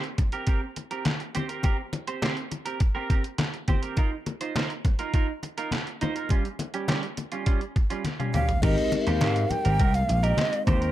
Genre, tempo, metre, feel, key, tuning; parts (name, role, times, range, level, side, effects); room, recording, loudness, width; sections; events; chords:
early-eighties boogie funk; 103 BPM; 4/4; straight; Ab major; A4 = 440 Hz
clean electric guitar; riff; 0.0-10.9 s; G3 to C5; -32 LUFS; right 5 dB; analog chorus
detuned 8-bit digital drum machine; drums; 0.0-10.9 s; crash cymbal, handclaps, hi-hat, kick drum, snare drum, toms; -26 LUFS; equal
congas; percussion; 0.2-10.8 s; -33 LUFS; left 4 dB
breathy shakuhachi; melody; 8.3-10.9 s; C5 to G5; -28 LUFS; right 2 dB
barky tine electric piano; accompaniment; 8.6-10.9 s; Ab3 to Bb4; -29 LUFS; left 5 dB; overdrive, phaser
vintage slap bass; bass; 8.6-10.9 s; Ab1 to Ab2; -24 LUFS; equal
little or no reverb; dark, warm production; -24 LUFS; side -14 dB against mid
0.0-8.6 A section; 8.6-10.9 B section
drum fill 8.1-8.6
0.0 Gmadd11/C; 4.0 Ebsus2; 6.3 Db; 8.6 Abmaj9